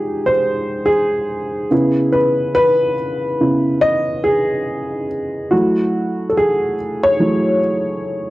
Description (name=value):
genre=hip hop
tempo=71 BPM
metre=4/4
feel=swing 58% on 16ths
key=unclear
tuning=A4 = 438 Hz
part: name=dark upright piano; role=solo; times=0.0-8.3 s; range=Db3 to Eb5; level=-15 LUFS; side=equal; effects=cassette tape
room=moderate studio ambience, RT60 0.5 s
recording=none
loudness=-15 LUFS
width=side -17 dB against mid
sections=0.0-8.3 A section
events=upright piano solo 0.0-8.3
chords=0.0 Fm9; 1.7 Dbm7; 5.5 Gbm7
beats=0.45 1.30 | 2.14 2.99 3.83 4.68 | 5.52 6.37 7.21 8.06